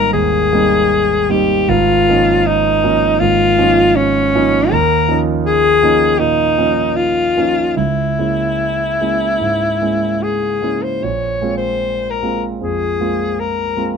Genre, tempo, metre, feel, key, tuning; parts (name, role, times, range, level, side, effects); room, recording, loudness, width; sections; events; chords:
classical, impressionist duo for alto saxophone and grand piano; 72-82 BPM; 4/4; rubato; A4 = 441 Hz
clear alto saxophone; melody; 0.0-14.0 s; Db4 to Db5; -14 LUFS; left 3 dB
dark concert grand piano; accompaniment; 0.0-14.0 s; Ab1 to F4; -17 LUFS; right 4 dB
light reverb; close, detailed microphones; -13 LUFS; side -6 dB against mid
0.0-14.0 A section
0.0 Abmaj9; 1.7 Bbm7/Ab; 4.7 Eb11; 7.8 Dbm6; 11.0 Bbsus2